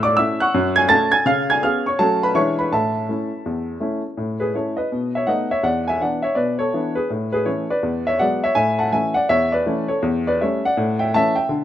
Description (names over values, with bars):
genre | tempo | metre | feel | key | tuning
jazz, stride piano | 164 BPM | 4/4 | swing 63% on 8ths | A major | A4 = 439 Hz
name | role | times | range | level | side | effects
clear upright piano | solo | 0.0-11.6 s | E2 to A6 | -17 LUFS | equal | none
room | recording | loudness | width
light reverb | rough home demo mix | -17 LUFS | side -11 dB against mid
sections
0.0-4.2 A section; 4.2-11.6 A section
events
none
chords
0.0 A; 0.5 F#m; 1.3 C#7; 2.0 F#m; 2.3 E7; 2.7 A; 4.9 B7; 5.6 E7; 7.1 A; 7.8 E9; 8.6 A; 10.0 A7/E; 10.8 A